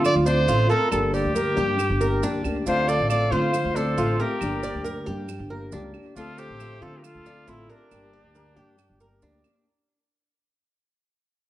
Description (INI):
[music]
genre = latin, Cuban son and guajira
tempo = 137 BPM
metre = 4/4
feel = straight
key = unclear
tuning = A4 = 439 Hz
[part]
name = warm trumpet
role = melody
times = 0.0-9.2 s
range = D4 to D5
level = -25 LUFS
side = equal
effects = plate reverb
[part]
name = fingerpicked steel-string acoustic guitar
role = accompaniment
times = 0.0-9.7 s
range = D3 to G4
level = -30 LUFS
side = left 2 dB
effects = none
[part]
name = Cuban tres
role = arpeggios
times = 0.0-9.6 s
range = D4 to D5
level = -28 LUFS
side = right 2 dB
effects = tape echo
[part]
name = upright bass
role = bass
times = 0.0-9.4 s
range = G1 to D3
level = -27 LUFS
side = equal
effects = none
[part]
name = claves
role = percussion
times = 0.0-9.7 s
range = none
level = -39 LUFS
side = right 7 dB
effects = none
[part]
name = maracas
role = percussion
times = 0.0-9.7 s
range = none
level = -43 LUFS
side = right 10 dB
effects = none
[part]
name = bright silver concert flute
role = second line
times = 2.7-9.2 s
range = G4 to F5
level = -33 LUFS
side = left 2 dB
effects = none
[sound]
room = moderate large studio reverb, RT60 1.0 s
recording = worn, warbling old tape, cassette tape, warbly pitch drift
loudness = -20 LUFS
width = side -14 dB against mid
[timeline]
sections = 0.0-9.7 A section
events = fade-out 0.0-9.7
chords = 0.0 Dm7; 0.9 Gm; 2.7 Dm7; 4.4 Gm; 6.2 Dm7; 7.9 Gm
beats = 0.04 0.48 | 0.92 1.35 1.79 2.23 | 2.67 3.10 3.54 3.98 | 4.41 4.85 5.29 5.73 | 6.16 6.60 7.04 7.47 | 7.91 8.35 8.79 9.22